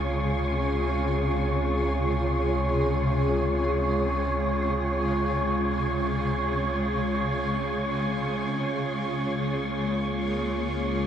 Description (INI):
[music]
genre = ambient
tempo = free time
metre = none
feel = none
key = unclear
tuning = A4 = 440 Hz
[part]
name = granular cloud pad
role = sustained chords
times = 0.0-11.1 s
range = C3 to Ab4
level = -26 LUFS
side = equal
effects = built-in reverb
[part]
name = warm sub bass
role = bass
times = 0.0-11.1 s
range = Db2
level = -31 LUFS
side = equal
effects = none
[part]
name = wind-like tuned noise texture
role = texture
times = 0.0-11.1 s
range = Db5 to Db6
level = -30 LUFS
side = right 1 dB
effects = built-in reverb
[sound]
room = wet huge ambient reverb, RT60 9.5 s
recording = cassette tape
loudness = -24 LUFS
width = side -9 dB against mid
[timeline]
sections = 0.0-11.1 A section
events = none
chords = 0.0 Bbm7/Db